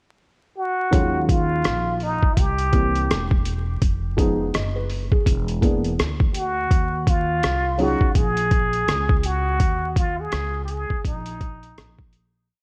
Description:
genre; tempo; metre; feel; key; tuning
hip hop, jazz-hop; 83 BPM; 4/4; swing 59% on 16ths; Eb dorian; A4 = 441 Hz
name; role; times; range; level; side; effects
trumpet with plunger mute; melody; 0.6-12.1 s; Eb4 to Ab4; -27 LUFS; equal; tape echo
dark upright piano; accompaniment; 0.9-8.1 s; Eb3 to Eb5; -28 LUFS; equal; none
upright bass; bass; 0.9-12.5 s; E1 to Eb2; -28 LUFS; equal; none
lo-fi sampler-style drum kit; drums; 0.9-12.3 s; hi-hat, kick drum, rim click; -23 LUFS; equal; none
room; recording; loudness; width
studio ambience; vinyl crackle; -22 LUFS; mono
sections
0.0-0.9 pickup bar; 0.9-12.5 A section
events
fade-out 9.6-12.5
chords
0.0 N.C.; 0.9 Ebm11; 2.4 C7; 3.8 Fm7b5; 5.3 E7#11; 6.7 Ebm11

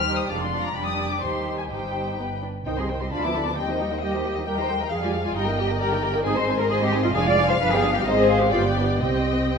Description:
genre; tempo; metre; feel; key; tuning
quick classical-period movement for string orchestra; 122-136 BPM; 2/4; rubato; C minor; A4 = 440 Hz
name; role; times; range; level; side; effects
muted chamber violin section; melody; 0.0-9.6 s; C5 to F6; -28 LUFS; left 7 dB; none
muted chamber violin section; second line; 0.0-9.6 s; F4 to D6; -27 LUFS; left 2 dB; none
muted chamber viola section; accompaniment; 0.0-9.6 s; D3 to Bb4; -27 LUFS; right 2 dB; none
muted chamber double bass section; bass; 0.0-9.6 s; F1 to F2; -28 LUFS; right 2 dB; none
muted studio cello section; bass; 0.0-9.5 s; Eb2 to D5; -27 LUFS; right 1 dB; none
room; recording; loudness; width
wet recital hall reverb, RT60 1.5 s; minimal, uncompressed stereo recording; -21 LUFS; side -6 dB against mid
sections
0.0-2.7 A section; 2.7-9.6 B section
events
none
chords
0.3 Dm7b5/F; 0.8 G5/F; 1.2 Cm/Eb; 1.7 Cm/G; 2.2 G; 2.7 Cm; 3.1 Bdim/D; 3.6 Cm/Eb; 4.5 Eb; 4.9 Ddim/F; 5.4 Eb/G; 6.2 Ab; 7.1 Ddim/F; 7.6 G7; 8.1 Ab; 8.5 G; 9.0 Cm

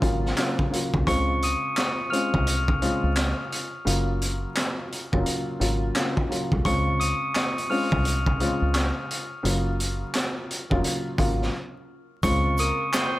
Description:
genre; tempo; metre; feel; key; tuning
hip hop, boom-bap hip-hop; 86 BPM; 4/4; swing 62% on 16ths; Db major; A4 = 440 Hz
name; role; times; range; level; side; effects
dark upright piano; accompaniment; 0.0-13.2 s; Db3 to F4; -28 LUFS; left 1 dB; cassette tape, high-pass filter, low-pass filter
deep dub fingered electric bass; bass; 0.0-12.7 s; F1 to Db2; -26 LUFS; equal; none
raw garage drum kit; drums; 0.0-13.1 s; handclaps, hi-hat, kick drum, snare drum; -27 LUFS; equal; none
glockenspiel with soft plastic mallets; melody; 1.1-13.2 s; Db6 to F7; -29 LUFS; equal; high-pass filter, low-pass filter, ping-pong delay
tube shaker; percussion; 12.2-13.1 s; none; -39 LUFS; right 6 dB; none
mellow saxophone section; stabs; 12.6-13.2 s; Bb3 to C5; -30 LUFS; right 3 dB; high-pass filter, low-pass filter
room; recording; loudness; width
little or no reverb; vinyl crackle; -22 LUFS; side -16 dB against mid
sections
0.0-12.2 A section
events
break 11.5-12.2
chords
0.0 Gbmaj7; 1.1 Dbmaj7; 3.9 Gbmaj7; 6.7 Dbmaj7; 9.4 Gbmaj7; 12.2 Dbmaj7

